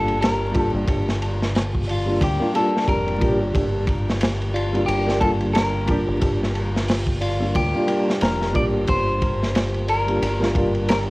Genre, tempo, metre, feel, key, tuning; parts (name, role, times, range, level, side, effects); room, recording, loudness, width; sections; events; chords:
trip hop; 90 BPM; 4/4; swing 58% on 16ths; G minor; A4 = 440 Hz
clean electric guitar; melody; 0.0-11.0 s; F4 to D5; -26 LUFS; left 1 dB; cassette tape, tape echo
dark upright piano; accompaniment; 0.0-11.1 s; G3 to G4; -25 LUFS; equal; tremolo, cassette tape
dark detuned synth bell; arpeggios; 0.0-11.1 s; F4 to G5; -29 LUFS; equal; chorus, cassette tape, tape echo
deep dub fingered electric bass; bass; 0.0-11.1 s; F1 to D2; -25 LUFS; equal
crunchy breakbeat drum kit; drums; 0.1-11.1 s; hi-hat, kick drum, ride cymbal, snare drum; -24 LUFS; equal; cassette tape
light reverb, small room ambience; home recording on cassette, vinyl crackle; -18 LUFS; side -21 dB against mid
0.0-11.1 A section
0.0 Gm7